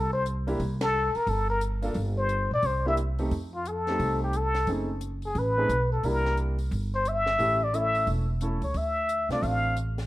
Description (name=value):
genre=jazz, small-group swing and bop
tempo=177 BPM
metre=4/4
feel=swing 63% on 8ths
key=C mixolydian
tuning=A4 = 440 Hz
part: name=trumpet with plunger mute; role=melody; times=0.0-9.8 s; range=F4 to F5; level=-27 LUFS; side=left 1 dB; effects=none
part: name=upright bass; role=bass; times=0.0-10.1 s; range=E1 to F2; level=-29 LUFS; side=equal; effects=none
part: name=compact cocktail drum kit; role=drums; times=0.3-10.0 s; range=hi-hat, kick drum, ride cymbal, snare drum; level=-40 LUFS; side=equal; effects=none
part: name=warm grand piano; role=accompaniment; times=0.5-9.8 s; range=A3 to A4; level=-33 LUFS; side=right 1 dB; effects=none
room=light reverb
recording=rough home demo mix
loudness=-24 LUFS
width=side -16 dB against mid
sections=0.0-10.1 A section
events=band accent 0.8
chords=0.0 F (rootless); 0.6 C5; 2.0 Gm; 2.6 C7; 3.3 F7; 4.7 F#dim7; 6.0 C7; 7.4 A7; 8.7 Dm7